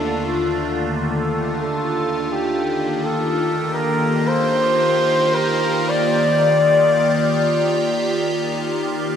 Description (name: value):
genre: ambient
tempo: free time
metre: none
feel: none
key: Eb lydian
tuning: A4 = 441 Hz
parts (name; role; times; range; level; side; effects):
- mellow flugelhorn; melody; 0.0-8.0 s; G4 to D5; -19 LUFS; left 1 dB; diffuse ambient delay
- evolving wavetable pad; sustained chords; 0.0-9.2 s; Eb2 to G4; -20 LUFS; equal; phaser, built-in reverb
room: wet cathedral reverb, RT60 7.4 s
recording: in a vast, echoing space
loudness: -16 LUFS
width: side -8 dB against mid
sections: 0.0-9.2 A section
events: none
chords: 0.0 Dm/Eb; 1.7 Ebmaj9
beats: free time